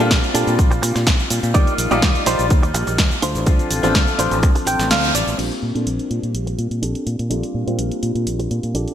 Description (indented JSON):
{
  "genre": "filtered disco house",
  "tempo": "125 BPM",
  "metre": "4/4",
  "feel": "straight",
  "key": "Bb major",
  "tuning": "A4 = 439 Hz",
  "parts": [
    { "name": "bright concert grand piano", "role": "accompaniment", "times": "0.0-8.9 s", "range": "F3 to D5", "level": "-23 LUFS", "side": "left 2 dB", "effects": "phaser, vintage 12-bit sampler grit, sidechain pumping, low-pass filter" },
    { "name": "direct-recorded clean electric guitar", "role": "riff", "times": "0.0-8.9 s", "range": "D4 to G5", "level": "-23 LUFS", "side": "right 2 dB", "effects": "wide subtle chorus, sidechain pumping, low-pass filter" },
    { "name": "fingered electric bass", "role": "bass", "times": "0.0-8.8 s", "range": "A1 to Bb2", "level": "-22 LUFS", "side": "equal", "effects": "sidechain pumping, low-pass filter" },
    { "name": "punchy analog drum machine", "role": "drums", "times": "0.0-8.9 s", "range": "crash cymbal, hi-hat, shaker, snare drum", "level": "-22 LUFS", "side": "equal", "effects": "sidechain pumping on hats, sidechain pumping on perc, sidechain pumping on cymbals, gated reverb" },
    { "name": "tube shaker", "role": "percussion", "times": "0.0-5.4 s", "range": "none", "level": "barely audible", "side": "none", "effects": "none" },
    { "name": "electronic kick drum", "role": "drums", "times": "0.1-4.5 s", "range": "none", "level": "-16 LUFS", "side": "equal", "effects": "none" }
  ],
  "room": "light reverb",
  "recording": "bright 1980s-style digital production",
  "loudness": "-16 LUFS",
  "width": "side -10 dB against mid",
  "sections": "0.0-5.4 A section; 5.4-8.9 B section",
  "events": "clean electric guitar fill 4.4-5.4, 8.5-8.9; kick drops out 4.9-5.4; band accent 4.9; filter sweep 5.4-8.9",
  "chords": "0.0 Bb69; 1.5 Ebmaj7; 3.2 Dm7; 5.4 Bb69"
}